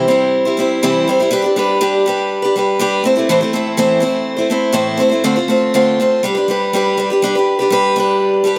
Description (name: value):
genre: rock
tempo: 122 BPM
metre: 4/4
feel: straight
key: unclear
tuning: A4 = 440 Hz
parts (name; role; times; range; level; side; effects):
- picked steel-string acoustic guitar; solo; 0.0-8.6 s; A2 to C5; -15 LUFS; equal; analog delay
room: moderate echo chamber reverb, RT60 1.3 s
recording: none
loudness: -15 LUFS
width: mono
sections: 0.0-7.2 A section; 7.2-8.6 B section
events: none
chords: 0.0 C; 1.3 G; 3.0 Am; 5.3 Dm7; 6.2 G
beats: 0.34 0.83 | 1.32 1.81 2.31 2.80 | 3.29 3.78 4.28 4.77 | 5.26 5.75 6.24 6.73 | 7.22 7.72 8.21